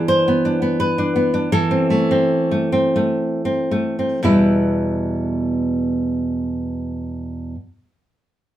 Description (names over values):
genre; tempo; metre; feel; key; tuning
romantic piece for solo classical guitar; 55-85 BPM; 3/4; rubato; E minor; A4 = 444 Hz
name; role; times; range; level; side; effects
nylon-string guitar; solo; 0.0-7.6 s; E2 to C5; -17 LUFS; equal; none
room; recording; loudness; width
wet studio reverb, RT60 0.5 s; band playing live in one room; -17 LUFS; side -12 dB against mid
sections
0.0-4.2 A section; 4.2-8.6 B section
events
slowing down 0.0-4.2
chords
0.0 E7(no3); 1.5 Am/E; 4.2 Em